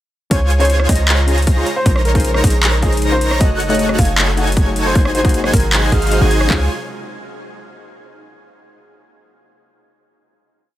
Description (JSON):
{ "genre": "future bass", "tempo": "155 BPM", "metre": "4/4", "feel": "half-time", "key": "Db major", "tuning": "A4 = 440 Hz", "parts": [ { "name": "dark concert grand piano", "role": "melody", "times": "0.3-6.6 s", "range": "Ab4 to F5", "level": "-23 LUFS", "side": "right 1 dB", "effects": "sidechain pumping, digital delay" }, { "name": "glassy digital keys", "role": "accompaniment", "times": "0.3-6.7 s", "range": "A3 to Gb5", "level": "-25 LUFS", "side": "left 4 dB", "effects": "chorus, sidechain pumping" }, { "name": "airy breathy pad", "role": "sustained chords", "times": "0.7-6.7 s", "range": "C3 to F4", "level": "-28 LUFS", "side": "left 1 dB", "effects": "chorus, vintage 12-bit sampler grit, sidechain pumping" }, { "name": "airy dreamy lead", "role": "arpeggios", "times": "0.3-6.6 s", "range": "F6 to Bb6", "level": "-28 LUFS", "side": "equal", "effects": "chorus, sidechain pumping, dub echo" }, { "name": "supersaw chords", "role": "riff", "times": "0.3-6.6 s", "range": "Eb4 to Bb5", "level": "-22 LUFS", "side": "equal", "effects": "sidechain pumping" }, { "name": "warm 808-style bass", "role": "bass", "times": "0.3-6.7 s", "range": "Gb1 to Db2", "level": "-17 LUFS", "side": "equal", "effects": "sidechain pumping" }, { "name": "trap drum kit", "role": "drums", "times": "0.3-6.6 s", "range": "handclaps, kick drum", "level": "-15 LUFS", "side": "equal", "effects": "overdrive" }, { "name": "trap drum kit", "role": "drums", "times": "0.3-6.5 s", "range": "handclaps, hi-hat, rim click", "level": "-20 LUFS", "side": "equal", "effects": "overdrive" } ], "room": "little or no reverb", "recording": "none", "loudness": "-12 LUFS", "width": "side -14 dB against mid", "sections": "0.3-6.5 drop; 6.5-8.1 final chord", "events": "drop 0.3-6.5", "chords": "0.3 Dbmaj7; 1.7 Bbm11; 3.4 Gbm6; 5.0 Ab7; 6.5 Dbmaj7", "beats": "| 0.31 0.70 1.08 1.47 | 1.86 2.25 2.63 3.02 | 3.41 3.79 4.18 4.57 | 4.96 5.34 5.73 6.12 | 6.50" }